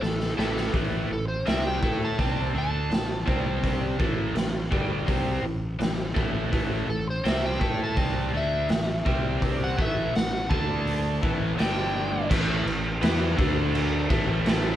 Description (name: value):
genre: blues rock power trio and southern rock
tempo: 83 BPM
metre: 4/4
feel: straight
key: unclear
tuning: A4 = 440 Hz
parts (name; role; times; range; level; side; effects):
- overdriven slide guitar; melody; 0.0-12.3 s; A4 to A5; -31 LUFS; equal; none
- overdriven electric guitar; riff; 0.0-14.8 s; G2 to A4; -29 LUFS; equal; none
- fuzz fingered electric bass; bass; 0.0-14.8 s; G1 to A2; -29 LUFS; equal; overdrive
- raw garage drum kit; drums; 0.0-14.6 s; crash cymbal, hi-hat, kick drum, snare drum; -27 LUFS; equal; none
room: light reverb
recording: band playing live in one room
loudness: -23 LUFS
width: side -12 dB against mid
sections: 0.0-12.3 A section; 12.3-14.8 B section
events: drum fill 0.0-0.7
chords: 0.0 A5; 3.3 C5; 4.0 A5; 9.1 C5; 9.8 A5; 10.5 D5; 11.2 A5; 11.6 G5; 12.3 A5; 13.4 D5; 14.1 A5